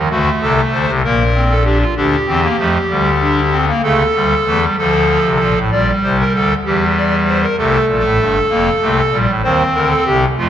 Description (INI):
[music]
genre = classical, baroque-style 3-part fugue for pipe organ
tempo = 64 BPM (dotted quarters)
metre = 6/8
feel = straight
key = G minor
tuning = A4 = 439 Hz
[part]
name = pipe organ, clarinet reed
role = solo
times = 0.0-10.5 s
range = F1 to D5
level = -12 LUFS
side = equal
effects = none
[sound]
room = wet concert hall reverb, RT60 1.9 s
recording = worn, warbling old tape, cassette tape, warbly pitch drift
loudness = -12 LUFS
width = side -10 dB against mid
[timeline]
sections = 0.0-5.7 A section; 5.7-10.5 B section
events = none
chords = 0.1 D7; 1.0 Gm/Bb; 2.0 Dm; 2.9 D7sus4; 3.8 A7/C#; 4.8 Dm; 5.7 Gm/Bb; 6.7 Edim; 7.6 Am; 8.5 F; 9.4 Cm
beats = | 0.10 1.04 | 1.96 2.90 | 3.84 4.78 | 5.71 6.66 | 7.59 8.51 | 9.44 10.38